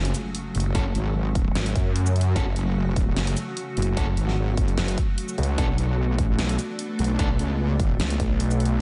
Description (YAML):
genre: heavy wobble dubstep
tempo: 149 BPM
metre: 4/4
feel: half-time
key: F# minor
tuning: A4 = 439 Hz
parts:
  - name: evolving wavetable pad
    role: sustained chords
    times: 0.0-8.8 s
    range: C#3 to F#4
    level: -33 LUFS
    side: equal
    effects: ensemble chorus, built-in reverb, phaser, sidechain pumping
  - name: wobble bass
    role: bass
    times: 0.0-8.0 s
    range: F#1 to C#2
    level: -26 LUFS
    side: equal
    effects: chorus, overdrive
  - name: impact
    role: sound effects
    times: 0.2-0.7 s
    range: none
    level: -43 LUFS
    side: equal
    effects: none
  - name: big-room dance drum kit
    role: drums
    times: 0.1-8.7 s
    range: hi-hat, shaker, snare drum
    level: -34 LUFS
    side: equal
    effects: none
  - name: sludgy distorted guitar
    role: stabs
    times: 0.7-7.3 s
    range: B3 to A4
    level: -37 LUFS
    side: equal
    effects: overdrive, delay
  - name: electronic kick drum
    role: drums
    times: 0.7-8.3 s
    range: none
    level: -27 LUFS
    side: equal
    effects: none
  - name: snarling distorted saw bass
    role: bass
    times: 1.6-2.3, 4.8-5.6, 8.0-8.8 s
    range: F#1 to F#2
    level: -25 LUFS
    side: equal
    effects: distortion, overdrive
room: moderate lush hall reverb, RT60 1.8 s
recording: dreamy mix soaked in reverb, nothing above 10.4 kHz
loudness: -24 LUFS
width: mono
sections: 0.0-8.8 A section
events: impact 0.0-0.7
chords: 0.0 F#m; 5.6 Bm7